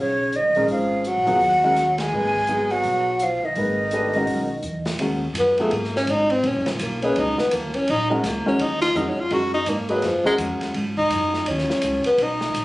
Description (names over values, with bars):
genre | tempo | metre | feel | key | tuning
modal jazz | 167 BPM | 4/4 | swing 62% on 8ths | Eb minor | A4 = 437 Hz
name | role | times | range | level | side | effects
breathy mellow silver concert flute | melody | 0.0-4.9 s | Db5 to Ab5 | -21 LUFS | right 1 dB | none
warm tenor saxophone | second line | 0.0-12.6 s | Db3 to Gb4 | -22 LUFS | equal | none
upright bass | bass | 0.0-12.6 s | Eb1 to Ab2 | -30 LUFS | equal | none
open jazz drum kit | drums | 0.3-12.6 s | hi-hat, kick drum, ride cymbal, snare drum | -31 LUFS | right 1 dB | none
warm grand piano | accompaniment | 0.6-10.7 s | Gb3 to Cb5 | -24 LUFS | left 1 dB | none
room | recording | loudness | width
light reverb | recorded on a phone in the room, club reverb, compression, nothing above 10.6 kHz | -19 LUFS | side -18 dB against mid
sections
0.0-5.0 A section; 5.0-12.6 B section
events
band accent 1.9; tenor saxophone solo 5.0-12.6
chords
0.0 Abm11; 5.0 Ebm11; 10.8 Abm11